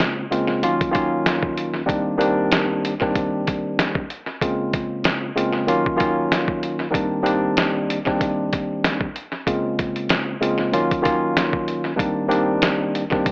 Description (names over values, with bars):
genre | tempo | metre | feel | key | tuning
hip hop, boom-bap hip-hop | 95 BPM | 4/4 | swing 55% on 16ths | C phrygian | A4 = 442 Hz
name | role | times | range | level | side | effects
mellow tine electric piano | accompaniment | 0.0-13.3 s | Db3 to F4 | -20 LUFS | equal | cassette tape
lo-fi sampler-style drum kit | drums | 0.0-13.3 s | hi-hat, kick drum, snare drum | -22 LUFS | equal | tape echo
room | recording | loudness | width
moderate spring reverb, RT60 1.5 s | echo-heavy mix, AM radio sound | -18 LUFS | side -36 dB against mid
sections
0.0-13.3 A section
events
none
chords
0.0 Bbm9; 0.6 Ebm9; 1.9 Cm9; 4.4 Bbm9; 5.7 Ebm9; 6.9 Cm9; 9.5 Bbm9; 10.7 Ebm9; 12.0 Cm9